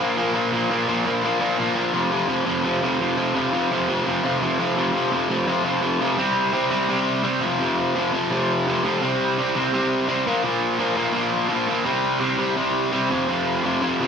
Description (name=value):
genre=punk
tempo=169 BPM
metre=4/4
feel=straight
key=unclear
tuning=A4 = 440 Hz
part: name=distorted electric guitar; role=solo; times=0.0-14.1 s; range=F2 to C4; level=-19 LUFS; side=equal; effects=distortion
room=moderate large studio reverb, RT60 0.9 s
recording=band playing live in one room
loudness=-19 LUFS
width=side -6 dB against mid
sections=0.0-4.8 A section; 4.8-6.2 B section; 6.2-14.1 C section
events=none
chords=0.0 Bb5; 1.9 F5; 6.2 C5; 7.4 F5; 9.0 C5; 10.3 Bb5; 11.9 C5; 13.1 F5